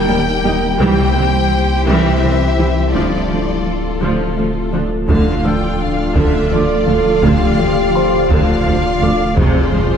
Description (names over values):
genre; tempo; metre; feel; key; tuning
cinematic, hybrid orchestral and electronic film score; 56 BPM (dotted quarters); 6/8; straight; D minor; A4 = 441 Hz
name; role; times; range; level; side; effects
warm symphonic violin section; melody; 0.0-10.0 s; D5 to G5; -24 LUFS; left 4 dB; none
rich studio violin section; second line; 0.0-10.0 s; F4 to G5; -24 LUFS; left 2 dB; none
rich symphonic viola section; accompaniment; 0.0-10.0 s; C3 to F4; -20 LUFS; right 2 dB; none
glassy FM pad; sustained chords; 0.0-10.0 s; F3 to A4; -21 LUFS; left 2 dB; ensemble chorus, built-in reverb
warm sub bass; bass; 0.0-10.0 s; D1 to C2; -21 LUFS; equal; none
felt-muted upright piano; texture; 0.0-10.0 s; C5 to G6; -29 LUFS; left 1 dB; ping-pong delay
resonant blip pluck; arpeggios; 0.1-10.0 s; C3 to Ab3; -25 LUFS; equal; none
clear symphonic cello section; bass; 0.1-9.8 s; C2 to F2; -21 LUFS; right 2 dB; none
mellow French horn section; sustained chords; 5.1-10.0 s; D4 to A4; -18 LUFS; right 1 dB; none
rich symphonic double bass section; bass; 5.1-9.8 s; F1 to D2; -21 LUFS; right 1 dB; none
taiko ensemble; drums; 5.1-10.0 s; none; -19 LUFS; equal; none
room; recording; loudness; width
wet concert hall reverb, RT60 2.5 s; heard from further back in the room; -12 LUFS; side -7 dB against mid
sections
0.0-5.1 A section; 5.1-10.0 A section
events
none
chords
0.0 Eb; 0.8 C; 2.9 Dm; 9.4 Fm